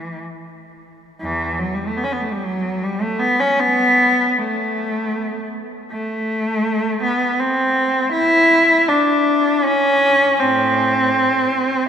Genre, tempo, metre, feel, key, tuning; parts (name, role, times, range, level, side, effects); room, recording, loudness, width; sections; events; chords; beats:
classical, free, expressive piece for unaccompanied cello; 55-83 BPM; 3/4; rubato; A4 = 441 Hz
rich cello; solo; 0.0-11.9 s; E2 to E4; -15 LUFS; equal
wet cathedral reverb, RT60 4.8 s; minimal, uncompressed stereo recording; -15 LUFS; side -8 dB against mid
0.0-1.2 A section; 1.2-11.9 B section
0.25 | 1.21 2.04 2.82 | 3.58 4.36 5.14 | 5.91 6.64 7.38 | 8.12 8.87 9.63 | 10.38 11.11 11.86